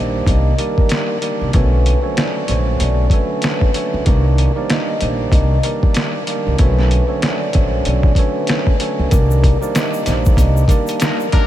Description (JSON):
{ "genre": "hip hop, boom-bap hip-hop", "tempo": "95 BPM", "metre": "4/4", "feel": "swing 59% on 16ths", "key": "unclear", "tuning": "A4 = 440 Hz", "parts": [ { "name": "vibraphone with soft mallets", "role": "melody", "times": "0.0-11.5 s", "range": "Bb4 to Eb5", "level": "-23 LUFS", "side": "left 2 dB", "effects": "high-pass filter, low-pass filter, ping-pong delay" }, { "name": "percussive tonewheel organ", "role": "accompaniment", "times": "0.0-11.5 s", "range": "D3 to D4", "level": "-22 LUFS", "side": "right 4 dB", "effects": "overdrive, high-pass filter, low-pass filter" }, { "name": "upright bass", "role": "bass", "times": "0.0-10.6 s", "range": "Bb1 to C#2", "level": "-16 LUFS", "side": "equal", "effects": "none" }, { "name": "lo-fi sampler-style drum kit", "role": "drums", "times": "0.3-11.5 s", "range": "hi-hat, kick drum, snare drum", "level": "-17 LUFS", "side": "equal", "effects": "overdrive" }, { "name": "egg shaker", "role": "percussion", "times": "9.1-11.3 s", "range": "none", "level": "-36 LUFS", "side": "left 9 dB", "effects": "none" }, { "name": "clear trumpet section", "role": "stabs", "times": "11.0-11.5 s", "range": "F#3 to Bb4", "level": "-24 LUFS", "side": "left 4 dB", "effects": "high-pass filter, low-pass filter" } ], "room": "moderate huge ambient reverb, RT60 7.8 s", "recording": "dreamy mix soaked in reverb", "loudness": "-13 LUFS", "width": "side -12 dB against mid", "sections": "0.0-9.1 A section; 9.1-11.5 B section", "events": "none", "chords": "0.0 Cm9; 1.5 Bm9; 4.1 Cm9; 6.6 Bm9; 9.1 Cm9" }